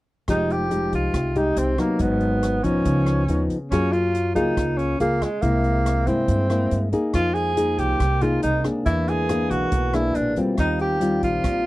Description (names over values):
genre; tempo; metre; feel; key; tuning
bossa nova; 140 BPM; 4/4; straight; F minor; A4 = 440 Hz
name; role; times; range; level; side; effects
breathy tenor saxophone; melody; 0.3-11.7 s; Ab3 to Ab4; -24 LUFS; right 1 dB; none
nylon-string guitar; accompaniment; 0.3-11.7 s; Ab2 to Ab4; -23 LUFS; left 2 dB; none
upright bass; bass; 0.3-11.7 s; F1 to G2; -25 LUFS; equal; none
open jazz drum kit; drums; 0.3-11.5 s; hi-hat, kick drum, rim click; -30 LUFS; equal; none
mellow French horn section; sustained chords; 7.1-11.7 s; D3 to F5; -33 LUFS; right 2 dB; none
room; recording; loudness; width
little or no reverb; dry, close 1970s-style studio recording; -19 LUFS; side -18 dB against mid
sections
0.3-11.7 A section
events
none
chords
0.3 Fm9; 2.0 Abm7; 2.9 Db9; 3.7 Gbmaj9; 5.4 C7b13; 7.1 Fm11; 8.9 E7#11; 10.6 Eb69